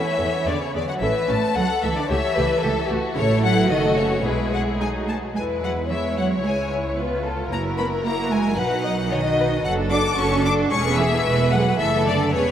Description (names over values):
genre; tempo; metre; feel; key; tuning
quick classical-period movement for string orchestra; 111 BPM; 2/4; straight; A major, E major from 3.2 s; A4 = 440 Hz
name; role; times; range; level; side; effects
clear chamber violin section; melody; 0.0-12.5 s; B4 to D6; -25 LUFS; left 4 dB; none
rich chamber violin section; second line; 0.0-12.5 s; E4 to D#5; -25 LUFS; left 2 dB; none
rich symphonic cello section; bass; 0.0-12.5 s; B2 to D4; -26 LUFS; right 4 dB; none
rich chamber viola section; accompaniment; 0.2-12.5 s; F#3 to B4; -26 LUFS; right 1 dB; none
rich chamber double bass section; bass; 0.2-12.5 s; E1 to E2; -26 LUFS; right 2 dB; none
room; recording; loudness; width
wet cathedral reverb, RT60 6.2 s; in a vast, echoing space; -19 LUFS; side -9 dB against mid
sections
0.0-5.4 A section; 5.4-12.5 B section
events
none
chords
0.5 E; 1.0 A; 1.6 A/C#; 2.1 A7/C#; 3.2 A; 3.7 F#m; 4.2 E/B; 4.8 B; 5.4 E; 6.4 C#m; 7.0 C#7; 7.5 F#7; 8.6 B; 9.6 D/F#; 10.7 E; 11.8 D/F#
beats
0.46 | 1.01 1.55 | 2.09 2.63 | 3.16 3.69 | 4.24 4.80 | 5.36 5.90 | 6.44 6.98 | 7.51 8.04 | 8.57 9.11 | 9.64 10.17 | 10.71 11.25 | 11.79 12.33